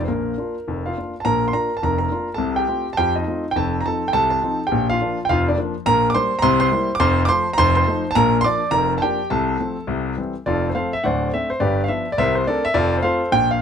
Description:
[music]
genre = jazz, stride piano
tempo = 208 BPM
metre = 4/4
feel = swing 62% on 8ths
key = Bb major, F major from 5.9 s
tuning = A4 = 440 Hz
[part]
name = warm grand piano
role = solo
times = 0.0-13.6 s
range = D1 to D6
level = -18 LUFS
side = equal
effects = none
[sound]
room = light reverb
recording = none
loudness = -18 LUFS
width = side -7 dB against mid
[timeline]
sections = 0.0-1.2 A section; 1.2-10.5 B section; 10.5-13.6 A section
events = none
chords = 0.1 Bb; 2.4 F7/C; 3.6 F7; 4.7 Bb; 5.9 Gm/Bb; 6.4 C7; 7.0 F; 7.6 F7; 8.2 Bb; 9.3 F/C; 9.9 C; 10.5 F; 11.0 D7; 11.6 G7; 12.2 Csus2; 12.8 F

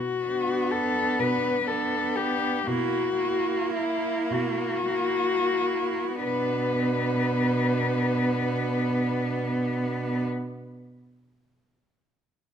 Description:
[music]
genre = classical, lyrical piece for cello ensemble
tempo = 28-45 BPM (dotted quarters)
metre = 6/8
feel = rubato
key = B minor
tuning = A4 = 440 Hz
[part]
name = dark cello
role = melody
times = 0.0-10.3 s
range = E4 to B4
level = -27 LUFS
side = left 5 dB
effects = none
[part]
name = rich cello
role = bass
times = 0.0-10.2 s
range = B2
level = -29 LUFS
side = right 2 dB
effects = none
[part]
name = rich cello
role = accompaniment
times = 0.2-10.2 s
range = A#3 to B3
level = -31 LUFS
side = equal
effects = none
[part]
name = rich cello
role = second line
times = 0.3-10.2 s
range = D4 to E4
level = -32 LUFS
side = right 12 dB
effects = none
[sound]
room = light reverb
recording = close, detailed microphones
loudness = -24 LUFS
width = side -8 dB against mid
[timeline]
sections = 0.0-6.2 A section; 6.2-9.9 B section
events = slowing down 0.0-6.2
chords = 0.0 Bm; 2.7 F#7/B; 6.2 Bm

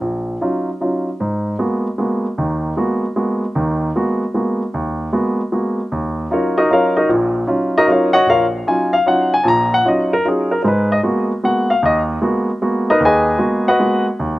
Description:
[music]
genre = jazz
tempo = 152 BPM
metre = 3/4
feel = swing 66% on 8ths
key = Eb minor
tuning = A4 = 440 Hz
[part]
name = warm grand piano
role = solo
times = 0.0-14.4 s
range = Bb1 to Bb5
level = -15 LUFS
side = equal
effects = none
[sound]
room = light reverb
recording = recorded outdoors, with no room sound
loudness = -15 LUFS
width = side -17 dB against mid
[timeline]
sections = 0.0-5.9 A section; 5.9-14.4 B section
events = none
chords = 0.0 Ebm9; 1.2 Abm9; 5.9 Ebm9; 10.6 Abm9

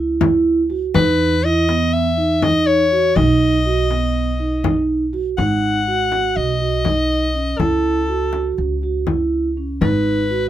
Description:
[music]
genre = contemporary instrumental, chamber music in an uneven meter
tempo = 243 BPM (eighths)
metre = 9/8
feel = straight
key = unclear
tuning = A4 = 442 Hz
[part]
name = vibraphone with soft mallets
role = arpeggios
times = 0.0-10.5 s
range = B3 to F#4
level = -19 LUFS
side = right 4 dB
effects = none
[part]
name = upright bass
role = bass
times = 0.0-10.5 s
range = G#1 to E2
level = -22 LUFS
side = equal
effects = none
[part]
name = frame drum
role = percussion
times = 0.2-10.0 s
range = none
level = -21 LUFS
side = left 5 dB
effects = none
[part]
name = bright soprano saxophone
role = melody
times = 1.0-10.4 s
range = A4 to F#5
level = -20 LUFS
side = left 3 dB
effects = none
[sound]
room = little or no reverb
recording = none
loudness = -15 LUFS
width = side -12 dB against mid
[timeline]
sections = 0.0-5.4 A section; 5.4-10.5 B section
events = none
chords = 0.0 C#madd11; 0.9 E5; 3.2 B; 5.4 G#5; 6.4 B; 7.6 A6/C#; 9.8 G#m7

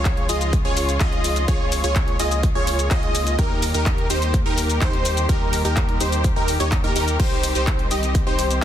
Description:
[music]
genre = EDM, festival progressive house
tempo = 126 BPM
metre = 4/4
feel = straight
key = unclear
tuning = A4 = 439 Hz
[part]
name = muted chamber string section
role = sustained chords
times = 0.0-8.6 s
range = Db3 to G4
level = -29 LUFS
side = left 3 dB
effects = sidechain pumping
[part]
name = wide unison lead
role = arpeggios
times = 0.0-8.6 s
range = Bb4 to Eb5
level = -27 LUFS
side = right 1 dB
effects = sidechain pumping, dub echo
[part]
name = supersaw stab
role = riff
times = 0.0-8.6 s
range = Eb4 to Eb5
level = -26 LUFS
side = right 1 dB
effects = sidechain pumping, dub echo
[part]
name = saturated sub bass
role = bass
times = 0.0-8.6 s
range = C2 to Eb2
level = -25 LUFS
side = equal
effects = sidechain pumping
[part]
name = big-room dance drum kit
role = drums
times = 0.1-8.6 s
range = crash cymbal, handclaps, hi-hat, shaker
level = -27 LUFS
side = left 1 dB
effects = studio reverb
[part]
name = electronic kick drum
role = drums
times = 0.1-8.2 s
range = none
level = -21 LUFS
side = equal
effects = studio reverb
[sound]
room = digital ambience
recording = dense, heavily limited modern master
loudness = -18 LUFS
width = side -10 dB against mid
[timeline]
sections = 0.0-8.6 A section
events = none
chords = 0.0 Db; 3.4 Eb; 7.2 Cm

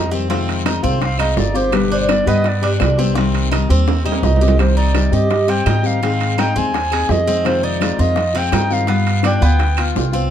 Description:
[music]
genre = latin, Cuban son and guajira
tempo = 168 BPM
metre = 4/4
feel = straight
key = C harmonic minor, C minor from 4.6 s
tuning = A4 = 443 Hz
[part]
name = mellow clarinet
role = melody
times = 0.0-9.8 s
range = G4 to Ab5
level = -21 LUFS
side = right 1 dB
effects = tape echo
[part]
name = nylon-string guitar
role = accompaniment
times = 0.0-10.3 s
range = B2 to Ab4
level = -21 LUFS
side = left 6 dB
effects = none
[part]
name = Cuban tres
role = arpeggios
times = 0.0-10.3 s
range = B3 to Ab4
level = -23 LUFS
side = right 1 dB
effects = none
[part]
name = upright bass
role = bass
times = 0.0-10.3 s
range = G1 to Ab2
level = -18 LUFS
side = right 1 dB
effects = none
[part]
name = bongos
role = percussion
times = 0.1-10.3 s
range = none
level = -26 LUFS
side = left 6 dB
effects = none
[part]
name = guiro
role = percussion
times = 0.1-10.3 s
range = none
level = -32 LUFS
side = left 5 dB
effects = none
[part]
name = timbales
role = percussion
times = 0.3-10.1 s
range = none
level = -25 LUFS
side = right 7 dB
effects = none
[part]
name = claves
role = percussion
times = 0.7-10.0 s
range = none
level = -32 LUFS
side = right 8 dB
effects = none
[sound]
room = moderate studio reverb, RT60 0.7 s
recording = dark, warm production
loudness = -14 LUFS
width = side -10 dB against mid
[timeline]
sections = 0.0-4.6 A section; 4.6-10.3 B section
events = clarinet solo 0.0-4.6; drum fill 3.9-4.6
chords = 0.3 Fm7; 1.7 G; 3.2 Cm; 6.0 Ab; 7.5 Fm7; 8.9 G7

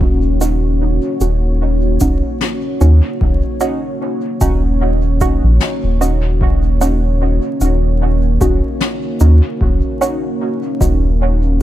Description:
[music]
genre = ambient dub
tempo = 75 BPM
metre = 4/4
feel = swing 56% on 16ths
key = Eb minor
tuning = A4 = 439 Hz
[part]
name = deep dark ambient pad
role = sustained chords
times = 0.0-11.6 s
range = Bb3 to F5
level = -20 LUFS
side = equal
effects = chorus, built-in reverb
[part]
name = round analog bass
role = bass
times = 0.0-11.6 s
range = Eb1 to Eb2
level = -13 LUFS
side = equal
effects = none
[part]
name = electronic kick drum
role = drums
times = 0.0-11.0 s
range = none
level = -18 LUFS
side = equal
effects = none
[part]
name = filtered dub chord stab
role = stabs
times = 0.4-11.0 s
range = Db4 to Gb4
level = -21 LUFS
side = right 2 dB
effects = analog chorus, dub echo
[part]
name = cabasa and snare drum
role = drums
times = 0.4-11.0 s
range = none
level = -24 LUFS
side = left 4 dB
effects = dub echo
[sound]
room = small room ambience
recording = echo-heavy mix, vinyl crackle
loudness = -13 LUFS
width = side -13 dB against mid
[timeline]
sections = 0.0-11.6 A section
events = none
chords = 0.0 Ebm7

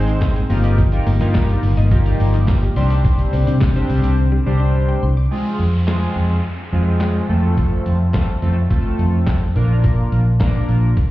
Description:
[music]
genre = dance-pop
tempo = 106 BPM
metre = 4/4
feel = straight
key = unclear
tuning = A4 = 440 Hz
[part]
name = chorused polysynth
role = accompaniment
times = 0.0-10.9 s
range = G3 to C5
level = -23 LUFS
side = equal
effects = sidechain pumping
[part]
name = lush unison pad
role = sustained chords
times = 0.0-5.3 s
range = D3 to F4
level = -27 LUFS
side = left 1 dB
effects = chorus, sidechain pumping
[part]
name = vintage muted fingered electric bass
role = bass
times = 0.0-10.9 s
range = G1 to C3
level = -16 LUFS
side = equal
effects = sidechain pumping
[part]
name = mallet-like synth pluck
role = arpeggios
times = 0.1-5.3 s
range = D3 to D6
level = -32 LUFS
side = left 4 dB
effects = chorus, sidechain pumping, digital delay
[part]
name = trip hop sampler-style drum kit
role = drums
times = 0.1-11.1 s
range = handclaps, hi-hat, kick drum, shaker, snare drum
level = -19 LUFS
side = equal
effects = none
[part]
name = tambourine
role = percussion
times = 0.1-4.0 s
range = none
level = -53 LUFS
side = right 6 dB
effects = none
[part]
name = downlifter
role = sound effects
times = 5.3-9.8 s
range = none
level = -36 LUFS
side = left 1 dB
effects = none
[sound]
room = light reverb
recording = heard muffled through a wall, stone room reverb, EQ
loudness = -14 LUFS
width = side -16 dB against mid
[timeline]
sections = 0.0-5.3 A section; 5.3-11.1 B section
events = silent gap 4.2-5.3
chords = 0.0 Ab; 0.5 Ebadd9/G; 2.8 Csus2; 5.3 Fm; 7.3 F; 9.6 Bb

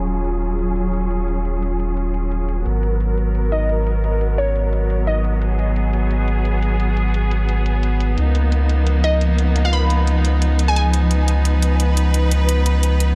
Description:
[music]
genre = liquid drum and bass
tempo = 174 BPM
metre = 4/4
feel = swing 53% on 16ths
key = G# dorian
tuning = A4 = 440 Hz
[part]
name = bright studio string section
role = sustained chords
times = 0.0-13.2 s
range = E#3 to B4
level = -25 LUFS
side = equal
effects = none
[part]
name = warm sub bass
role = bass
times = 0.0-13.2 s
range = D#1 to C#2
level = -20 LUFS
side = equal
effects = none
[part]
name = electronic hi-hat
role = drums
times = 0.1-13.1 s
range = none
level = -32 LUFS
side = equal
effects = overdrive
[part]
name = glassy wavetable pluck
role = melody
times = 3.5-5.3, 9.0-10.8 s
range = C#5 to B5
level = -28 LUFS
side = equal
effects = chorus, dub echo
[sound]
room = little or no reverb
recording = low-pass filter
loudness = -19 LUFS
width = mono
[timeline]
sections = 0.0-13.2 A section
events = filter sweep 0.0-13.2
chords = 0.0 D#m11; 2.7 G#m9; 8.2 C#13

